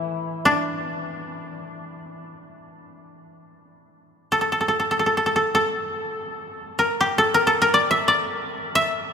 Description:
japanese traditional, Japanese chamber music; free time; A in sen; A4 = 440 Hz
koto; melody; 0.0-9.1 s; D4 to E5; -20 LUFS; equal
koto; accompaniment; 0.0-2.3 s; A2 to E3; -34 LUFS; left 3 dB
wet cathedral reverb, RT60 7.5 s; minimal, uncompressed stereo recording; -19 LUFS; side -7 dB against mid
0.0-9.1 A section
free time

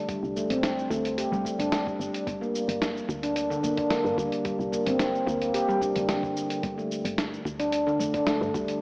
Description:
organic downtempo; 110 BPM; 4/4; straight; G minor; A4 = 440 Hz
handpan; arpeggios; 0.0-8.8 s; D3 to G4; -26 LUFS; equal; low-pass filter, digital delay
dusty soul sampler-style drum kit; drums; 0.1-8.8 s; hi-hat, shaker, snare drum; -32 LUFS; equal
electronic kick drum; drums; 0.1-8.7 s; -41 LUFS; equal
woody FM bass; bass; 0.2-8.6 s; F1 to G2; -35 LUFS; equal
wet lush hall reverb, RT60 2.4 s; worn, warbling old tape, cassette tape, warbly pitch drift, AM radio sound; -25 LUFS; side -27 dB against mid
0.0-8.8 A section
0.0 F (rootless); 2.3 Gm; 6.6 N.C.
| 0.09 0.63 1.18 1.73 | 2.27 2.82 3.36 3.91 | 4.45 5.00 5.54 6.09 | 6.63 7.18 7.72 8.27

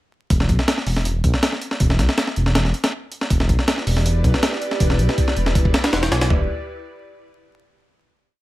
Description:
drum and bass, jungle; 160 BPM; 4/4; straight; E minor; A4 = 440 Hz
dark detuned saw bass; bass; 0.3-6.5 s; E1 to B1; -19 LUFS; equal
breakbeat sampler-style drum kit; drums; 0.3-6.4 s; hi-hat, kick drum, snare drum, toms; -19 LUFS; equal; small room ambience
airy breathy pad; sustained chords; 3.6-6.5 s; E4 to D5; -28 LUFS; right 1 dB; chorus
digital ambience; vinyl crackle; -17 LUFS; side -17 dB against mid
0.3-6.3 drop; 6.3-7.8 final chord
drop 0.3-6.3
0.3 Em7
| 0.30 0.68 1.05 1.43 | 1.80 2.18 2.55 2.93 | 3.30 3.68 4.05 4.43 | 4.80 5.18 5.55 5.93 | 6.30

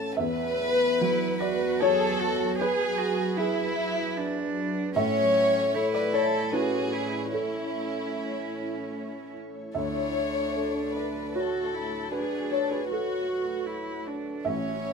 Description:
neoclassical piano and strings; 76 BPM; 3/4; rubato; A4 = 439 Hz
dark chamber violin section; melody; 0.0-14.9 s; E4 to A5; -28 LUFS; left 1 dB
felt-muted upright piano; accompaniment; 0.0-14.9 s; A1 to E5; -29 LUFS; left 1 dB
ethereal airy pad; sustained chords; 0.0-14.9 s; F#3 to C#5; -38 LUFS; equal; ensemble chorus, built-in reverb, tremolo
warm cello; second line; 1.0-14.9 s; C#4 to G#4; -32 LUFS; right 4 dB
moderate studio reverb, RT60 0.7 s; minimal, uncompressed stereo recording; -25 LUFS; side -5 dB against mid
0.2-14.9 A section
0.2 Eadd9; 4.9 A; 9.7 Dmaj7
| 0.17 0.99 1.80 | 2.59 3.38 4.16 | 4.95 5.73 6.51 | 7.31 8.12 8.93 | 9.75 10.55 11.34 | 12.12 12.89 13.67 | 14.45

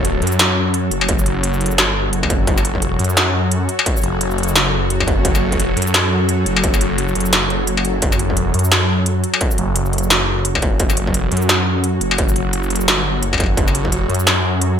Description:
half-time drum and bass; 173 BPM; 4/4; swing 59% on 16ths, half-time; F# minor; A4 = 438 Hz
bowed-like drone; sustained chords; 0.0-14.8 s; F#3 to C#5; -22 LUFS; left 1 dB; built-in reverb, vintage 12-bit sampler grit, sidechain pumping
phased detuned saw bass; bass; 0.0-14.8 s; F#1 to F#2; -19 LUFS; equal; phaser, tube saturation
industrial drum kit; drums; 0.0-14.7 s; hi-hat, shaker, snare drum, struck metal; -17 LUFS; equal; gated reverb
electronic kick drum; drums; 1.1-13.9 s; -19 LUFS; equal; distortion
light reverb, digital ambience; bright 1980s-style digital production; -14 LUFS; side -8 dB against mid
0.0-14.8 A section
break 7.7-8.0
0.0 F#m
0.04 0.39 0.74 | 1.09 1.43 1.78 2.13 | 2.47 2.82 3.17 3.51 | 3.86 4.21 4.55 4.90 | 5.25 5.59 5.94 6.29 | 6.63 6.98 7.33 7.67 | 8.02 8.37 8.72 9.06 | 9.41 9.76 10.10 10.45 | 10.80 11.14 11.49 11.84 | 12.18 12.53 12.88 13.22 | 13.57 13.92 14.27 14.61

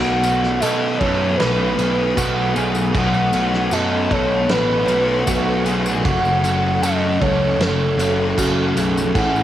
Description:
rock, shoegaze and dream pop; 78 BPM; 4/4; straight; B mixolydian; A4 = 440 Hz
pure breathy sine lead; melody; 0.0-9.4 s; A4 to F#5; -22 LUFS; equal; chorus, cassette tape, analog delay
ensemble organ-string; sustained chords; 0.0-9.4 s; A3 to D#6; -29 LUFS; right 1 dB; ensemble chorus
direct-recorded clean electric guitar; arpeggios; 0.0-9.4 s; F#4 to C#5; -27 LUFS; right 7 dB; lush chorus, analog delay
raw garage guitar; riff; 0.0-9.4 s; F#2 to E4; -25 LUFS; right 6 dB; overdrive, reverse reverb
thick fuzz guitar; riff; 0.0-9.4 s; F#2 to B3; -22 LUFS; left 6 dB; distortion, lush chorus
fuzz picked electric bass; bass; 0.0-9.4 s; F#1 to B2; -23 LUFS; equal; overdrive
tambourine; percussion; 0.0-9.4 s; -34 LUFS; left 4 dB
loose indie drum kit; drums; 0.2-9.3 s; crash cymbal, kick drum, snare drum; -25 LUFS; right 1 dB; cassette tape
light reverb; home recording on cassette; -16 LUFS; side -12 dB against mid
0.0-9.4 A section
0.0 B7; 6.0 F#m
0.62 1.40 2.17 | 2.95 3.72 4.50 5.27 | 6.04 6.82 7.59 8.37 | 9.14

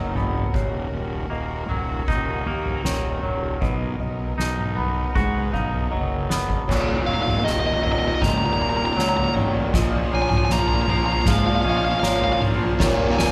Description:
post-rock; 78 BPM; 4/4; straight; Eb minor; A4 = 441 Hz
bright symphonic string section; sustained chords; 0.0-13.3 s; Eb3 to Db5; -37 LUFS; equal
felt-muted upright piano; arpeggios; 0.0-13.3 s; Db5 to F#5; -34 LUFS; equal
twangy electric guitar; arpeggios; 0.0-12.8 s; Eb2 to F#4; -31 LUFS; equal
fuzz fingered electric bass; bass; 0.0-13.3 s; Eb1 to Ab2; -30 LUFS; equal; overdrive
soft-mallet drum kit; drums; 0.2-13.3 s; crash cymbal, kick drum, snare drum, toms; -27 LUFS; equal
distorted electric guitar; riff; 6.7-13.3 s; Eb2 to F3; -28 LUFS; equal; distortion
dark smooth lead guitar; melody; 7.1-13.3 s; Eb5 to Bb5; -26 LUFS; equal; overdrive
overdriven semi-hollow guitar; riff; 12.8-13.3 s; Eb2 to Bb2; -25 LUFS; equal
moderate recital hall reverb, RT60 1.4 s; recorded in a church or concert hall; -22 LUFS; mono
0.0-6.7 A section; 6.7-13.3 B section
drum fill 5.9-6.7, 6.7-13.3; build-up 6.7-13.3
0.0 Bmaj7; 0.5 Ebm7; 3.6 Bmaj7; 6.7 Ebm; 9.7 Bbm7; 12.8 Ebm
| 0.54 1.31 2.08 2.85 | 3.62 4.38 5.15 5.92 | 6.68 7.45 8.22 8.98 | 9.75 10.51 11.28 12.04 | 12.80

